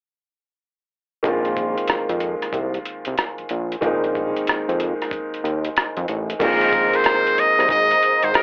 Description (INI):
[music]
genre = R&B, neo-soul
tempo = 93 BPM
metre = 4/4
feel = swing 64% on 16ths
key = unclear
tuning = A4 = 440 Hz
[part]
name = clear upright piano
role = accompaniment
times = 1.2-8.4 s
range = Eb3 to F4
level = -26 LUFS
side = equal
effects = none
[part]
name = boom bap sampler-style drum kit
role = drums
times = 1.2-8.4 s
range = crash cymbal, hi-hat, kick drum, rim click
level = -26 LUFS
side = equal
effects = overdrive
[part]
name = fat analog bass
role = bass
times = 1.3-8.3 s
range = Ab1 to F2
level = -28 LUFS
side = equal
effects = none
[part]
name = trumpet with metal mute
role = melody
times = 6.4-8.4 s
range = Bb4 to Eb5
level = -19 LUFS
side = equal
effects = none
[part]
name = warm analog pad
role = sustained chords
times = 6.4-8.4 s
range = Ab4 to Bb5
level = -28 LUFS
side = equal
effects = chorus
[sound]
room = moderate small room reverb, RT60 0.5 s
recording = worn, warbling old tape, cassette tape, warbly pitch drift, telephone sound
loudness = -21 LUFS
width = mono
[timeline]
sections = 1.2-6.4 A section; 6.4-8.4 B section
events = none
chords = 1.2 Bb9sus4